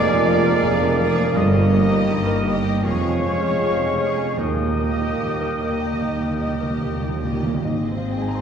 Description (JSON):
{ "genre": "classical", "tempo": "72-83 BPM", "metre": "4/4", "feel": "rubato", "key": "unclear", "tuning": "A4 = 436 Hz", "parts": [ { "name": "warm baby grand piano", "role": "melody", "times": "0.0-8.4 s", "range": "Eb2 to C6", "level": "-24 LUFS", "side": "equal", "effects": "none" }, { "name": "warm studio violin section", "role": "melody", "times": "0.0-8.4 s", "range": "Db5 to Eb5", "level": "-35 LUFS", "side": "left 3 dB", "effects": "none" }, { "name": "bright oboe", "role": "second line", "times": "0.0-7.3 s", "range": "Eb5 to G5", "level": "-34 LUFS", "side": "right 1 dB", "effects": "none" }, { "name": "clear studio violin section", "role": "second line", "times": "0.0-7.6 s", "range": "G4 to Ab4", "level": "-36 LUFS", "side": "left 3 dB", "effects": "none" }, { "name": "dark clarinet", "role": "second line", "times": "0.0-7.3 s", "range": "Bb4 to Db5", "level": "-33 LUFS", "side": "left 4 dB", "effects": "none" }, { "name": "mellow hollow silver concert flute", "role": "second line", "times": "0.0-7.3 s", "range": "Db6 to Eb6", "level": "-31 LUFS", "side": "left 3 dB", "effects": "none" }, { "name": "warm bassoon", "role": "accompaniment", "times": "0.0-7.3 s", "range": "Ab3 to Bb3", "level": "-30 LUFS", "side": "right 4 dB", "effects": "none" }, { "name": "warm studio viola section", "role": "accompaniment", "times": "0.0-8.4 s", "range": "Ab3 to Ab4", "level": "-31 LUFS", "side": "left 1 dB", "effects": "none" }, { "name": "mellow French horn section", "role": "sustained chords", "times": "0.0-8.4 s", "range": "Bb3 to Bb4", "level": "-30 LUFS", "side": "equal", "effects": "none" }, { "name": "mellow trombone section", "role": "sustained chords", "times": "0.0-7.3 s", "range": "Eb3 to Ab3", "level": "-29 LUFS", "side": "right 3 dB", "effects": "none" }, { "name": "clear trumpet", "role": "stabs", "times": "0.0-7.3 s", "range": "Db5 to Eb5", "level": "-28 LUFS", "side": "equal", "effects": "none" }, { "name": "dark studio double bass section", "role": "bass", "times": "0.0-8.4 s", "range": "F1 to Eb2", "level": "-29 LUFS", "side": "right 2 dB", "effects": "none" }, { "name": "mellow tuba", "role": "bass", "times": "0.0-7.5 s", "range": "F1 to Eb2", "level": "-27 LUFS", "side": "right 2 dB", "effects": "none" }, { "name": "rich studio cello section", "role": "bass", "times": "0.0-8.4 s", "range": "Eb2 to Ab2", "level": "-28 LUFS", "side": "right 1 dB", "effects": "none" }, { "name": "timpani", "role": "percussion", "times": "4.4-7.6 s", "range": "Eb3", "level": "-28 LUFS", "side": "right 1 dB", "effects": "none" } ], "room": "wet scoring stage reverb, RT60 1.6 s", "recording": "heard from further back in the room", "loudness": "-18 LUFS", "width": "side -7 dB against mid", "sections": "0.0-7.6 A section", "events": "timpani fill 4.4-7.6", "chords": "0.0 Bb7/F; 1.4 Eb/G; 2.8 Db/F; 4.4 Eb; 7.6 Ab" }